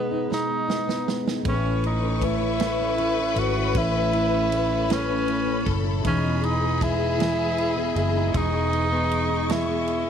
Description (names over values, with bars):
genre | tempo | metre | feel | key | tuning
six-eight pop ballad | 52 BPM (dotted quarters) | 6/8 | straight | unclear | A4 = 444 Hz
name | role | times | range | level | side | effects
mellow tenor saxophone | melody | 0.0-10.1 s | B3 to F#4 | -26 LUFS | right 2 dB | none
fingerpicked plugged-in steel-string acoustic guitar | accompaniment | 0.0-10.1 s | A2 to E4 | -28 LUFS | left 1 dB | double-tracked left and right
natural country drum kit | drums | 0.3-10.1 s | kick drum, ride cymbal, snare drum | -30 LUFS | right 4 dB | none
warm studio violin section | second line | 1.4-10.1 s | G#4 to B4 | -30 LUFS | left 15 dB | none
vintage muted fingered electric bass | bass | 1.4-10.1 s | E1 to A1 | -27 LUFS | equal | none
rich studio string section | sustained chords | 1.5-10.1 s | G#4 to C#6 | -33 LUFS | left 2 dB | none
room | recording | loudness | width
light reverb, studio ambience | 1960s-style stereo | -21 LUFS | side -8 dB against mid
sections
0.0-10.1 A section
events
drum fill 0.3-1.4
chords
0.0 G#m/B; 1.4 A; 6.0 Emaj7